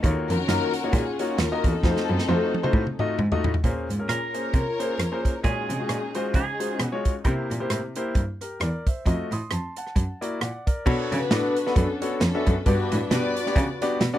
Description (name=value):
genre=uptempo gospel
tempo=133 BPM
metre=4/4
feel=swing 57% on 8ths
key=Bb minor, B minor from 10.9 s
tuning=A4 = 439 Hz
part: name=clear grand piano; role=accompaniment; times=0.0-14.2 s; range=G2 to Eb6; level=-28 LUFS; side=left 2 dB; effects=none
part: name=rich cello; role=bass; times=0.0-14.1 s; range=Eb2 to C#3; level=-27 LUFS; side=equal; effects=none
part: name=natural country drum kit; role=drums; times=0.0-14.1 s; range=crash cymbal, hi-hat, kick drum, rim click, snare drum, toms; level=-25 LUFS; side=right 1 dB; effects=none
part: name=warm studio string section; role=melody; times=0.3-7.2, 11.1-14.0 s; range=C4 to D5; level=-29 LUFS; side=left 2 dB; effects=none
part: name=clean electric guitar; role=melody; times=4.1-7.0 s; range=Ab4 to Bb4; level=-32 LUFS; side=right 4 dB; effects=none
room=little or no reverb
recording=dry, close 1970s-style studio recording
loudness=-22 LUFS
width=side -12 dB against mid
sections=0.0-3.6 A section; 3.6-10.9 B section; 10.9-14.2 A section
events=drum fill 1.8-3.6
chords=0.0 Ebm9; 1.8 F7b9; 3.6 Bbm9; 5.4 Ebm11/Bb; 7.3 C7; 9.1 F7b9; 10.0 Gb7b13; 10.9 Bm9; 12.7 Gmaj7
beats=| 0.04 0.49 0.94 1.39 | 1.84 2.29 2.74 3.19 | 3.64 4.09 4.54 5.00 | 5.45 5.90 6.35 6.80 | 7.26 7.71 8.16 8.61 | 9.06 9.52 9.97 10.42 | 10.87 11.32 11.77 12.22 | 12.66 13.11 13.56 14.01